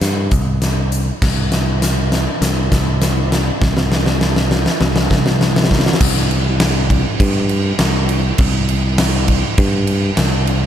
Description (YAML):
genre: post-rock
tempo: 100 BPM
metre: 4/4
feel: straight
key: unclear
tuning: A4 = 441 Hz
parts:
  - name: picked electric bass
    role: bass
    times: 0.0-10.7 s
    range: C2 to G2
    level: -17 LUFS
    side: equal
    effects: none
  - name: huge arena drum kit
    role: drums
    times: 0.0-10.6 s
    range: crash cymbal, hi-hat, kick drum, snare drum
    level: -16 LUFS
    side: equal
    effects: none
room: light reverb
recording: none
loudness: -13 LUFS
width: side -10 dB against mid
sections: 0.0-6.0 A section; 6.0-10.7 B section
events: build-up 0.0-6.0; drum fill 0.0-6.0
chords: none